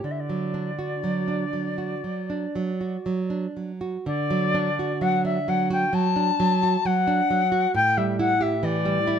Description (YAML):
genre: romantic duo for flute and classical guitar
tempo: 57-68 BPM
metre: 4/4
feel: rubato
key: D major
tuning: A4 = 441 Hz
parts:
  - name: bright silver concert flute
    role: melody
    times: 0.0-9.2 s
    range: D5 to A5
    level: -24 LUFS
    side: left 5 dB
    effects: plate reverb
  - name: nylon-string guitar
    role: accompaniment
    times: 0.0-9.2 s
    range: A2 to G4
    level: -24 LUFS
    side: right 4 dB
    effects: none
room: light reverb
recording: none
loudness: -22 LUFS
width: side -8 dB against mid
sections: 0.0-4.1 A section; 4.1-9.2 A section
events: none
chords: 0.0 D; 7.7 A7(no3)